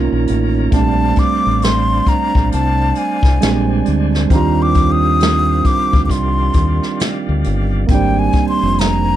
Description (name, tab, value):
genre	R&B, neo-soul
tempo	67 BPM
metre	4/4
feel	swing 60% on 16ths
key	Bb major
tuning	A4 = 440 Hz
part	barky tine electric piano	accompaniment	0.0-9.2 s	F3 to F4	-18 LUFS	right 9 dB	overdrive
part	bright tonewheel organ	sustained chords	0.0-9.2 s	Eb3 to A#5	-27 LUFS	left 1 dB	slow rotary speaker
part	fingered electric bass	bass	0.0-9.2 s	F1 to Eb2	-17 LUFS	left 1 dB	transformer saturation
part	vintage brush drum kit	drums	0.3-9.0 s	hi-hat, kick drum, snare drum	-16 LUFS	left 1 dB	none
part	breathy mellow silver concert flute	melody	0.7-9.2 s	G5 to Eb6	-18 LUFS	left 3 dB	slapback echo
room	little or no reverb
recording	none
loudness	-12 LUFS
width	side -12 dB against mid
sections	0.0-9.2 A section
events	none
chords	0.0 Bmaj9 (rootless); 0.7 Bbmaj9; 3.4 Bb9; 4.3 Eb69; 7.9 Abmaj7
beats	| 0.72 1.62 2.51 3.41 | 4.30 5.20 6.10 6.99 | 7.89 8.78